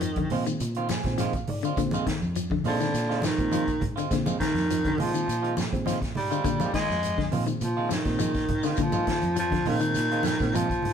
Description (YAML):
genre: afrobeat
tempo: 103 BPM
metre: 4/4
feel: straight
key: Bb mixolydian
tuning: A4 = 440 Hz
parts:
  - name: raspy baritone saxophone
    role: melody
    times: 0.0-10.9 s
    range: D3 to Ab3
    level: -27 LUFS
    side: right 1 dB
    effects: none
  - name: semi-hollow electric guitar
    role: arpeggios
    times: 0.0-10.7 s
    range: D3 to F3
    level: -32 LUFS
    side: left 7 dB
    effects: spring reverb
  - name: fingered electric bass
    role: bass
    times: 0.0-10.9 s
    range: F2 to Bb2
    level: -32 LUFS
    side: equal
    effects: none
  - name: vintage drum kit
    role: drums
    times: 0.0-10.9 s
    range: hi-hat, kick drum, snare drum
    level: -33 LUFS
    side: equal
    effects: none
  - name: congas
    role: percussion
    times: 0.0-10.9 s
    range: none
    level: -34 LUFS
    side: right 2 dB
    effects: none
  - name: shekere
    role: percussion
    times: 0.0-10.8 s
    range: none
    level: -39 LUFS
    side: left 5 dB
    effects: none
  - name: semi-hollow electric guitar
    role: stabs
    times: 0.2-10.9 s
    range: Eb3 to F4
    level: -34 LUFS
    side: right 6 dB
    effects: none
  - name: reed electric piano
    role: accompaniment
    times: 0.3-10.7 s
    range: Bb2 to Ab5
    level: -34 LUFS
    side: right 4 dB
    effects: fast tremolo
room: light reverb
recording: band playing live in one room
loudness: -24 LUFS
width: side -8 dB against mid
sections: 0.0-10.9 A section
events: baritone saxophone solo 0.0-10.9; reed electric piano fill 0.6-1.8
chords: 0.0 Bb9sus4